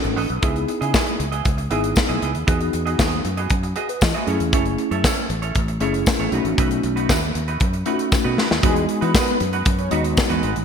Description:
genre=early-eighties boogie funk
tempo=117 BPM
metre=4/4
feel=straight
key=unclear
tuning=A4 = 441 Hz
part: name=mellow tine electric piano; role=accompaniment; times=0.0-10.5 s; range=G#3 to E5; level=-24 LUFS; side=left 1 dB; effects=medium stereo tremolo
part: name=semi-hollow electric guitar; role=riff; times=0.0-10.6 s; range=G#3 to D#5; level=-27 LUFS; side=right 6 dB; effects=lush chorus
part: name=fingered electric bass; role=bass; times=0.0-10.6 s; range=F#1 to E3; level=-24 LUFS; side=equal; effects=none
part: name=modern studio drum kit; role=drums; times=0.0-10.6 s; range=hi-hat, kick drum, snare drum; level=-21 LUFS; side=equal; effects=gated reverb
part: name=tambourine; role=percussion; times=0.9-10.3 s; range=none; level=-34 LUFS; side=left 6 dB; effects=none
part: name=mellow synth brass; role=second line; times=8.6-10.0 s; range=G#3 to D#5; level=-26 LUFS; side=equal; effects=chorus, ping-pong delay
room=moderate lush hall reverb, RT60 1.7 s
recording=bright 1980s-style digital production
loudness=-18 LUFS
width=side -7 dB against mid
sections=0.0-8.6 A section; 8.6-10.6 B section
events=drum fill 8.1-8.6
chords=0.4 C#m9; 2.5 Emaj9; 4.3 F#m7; 6.3 B7; 8.6 Emaj9

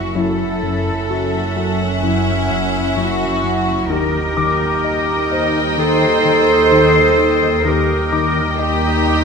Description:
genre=cinematic, suspense film score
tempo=64 BPM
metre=4/4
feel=straight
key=unclear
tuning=A4 = 440 Hz
part: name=clear studio violin section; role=melody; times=0.0-9.2 s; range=Gb5 to G5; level=-27 LUFS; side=left 1 dB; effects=none
part: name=dark studio violin section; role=second line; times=0.0-9.2 s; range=Eb5 to Fb5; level=-26 LUFS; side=left 4 dB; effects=none
part: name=warm clarinet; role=second line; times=0.0-9.2 s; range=Db4 to A4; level=-20 LUFS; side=right 1 dB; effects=none
part: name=dark studio viola section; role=accompaniment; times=0.0-9.2 s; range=Eb3 to Eb4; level=-25 LUFS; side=right 4 dB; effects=none
part: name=rich symphonic cello section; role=bass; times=0.0-9.2 s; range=Fb4 to C5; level=-20 LUFS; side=right 1 dB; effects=none
part: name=rich symphonic double bass section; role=bass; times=0.0-9.2 s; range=Eb2 to Gb2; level=-24 LUFS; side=right 5 dB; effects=none
part: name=organ-like drone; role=drone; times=0.0-9.2 s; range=Gb1 to Eb2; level=-26 LUFS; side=equal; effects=ensemble chorus, built-in reverb
part: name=clear baby grand piano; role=texture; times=0.0-9.2 s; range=Fb4 to D6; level=-26 LUFS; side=left 4 dB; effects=none
part: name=mellow French horn section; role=sustained chords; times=0.1-9.2 s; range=Eb3 to Fb4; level=-28 LUFS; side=left 3 dB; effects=none
part: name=fat analog bass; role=riff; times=0.2-9.2 s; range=Gb2 to Eb4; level=-23 LUFS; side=left 6 dB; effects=none
part: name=dark chamber violin section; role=texture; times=3.9-9.2 s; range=Eb6 to G6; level=-28 LUFS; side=left 3 dB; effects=none
room=wet scoring stage reverb, RT60 1.9 s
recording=minimal, uncompressed stereo recording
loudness=-14 LUFS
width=side -5 dB against mid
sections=0.0-9.2 A section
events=none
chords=0.0 Gbm7; 3.9 Eb

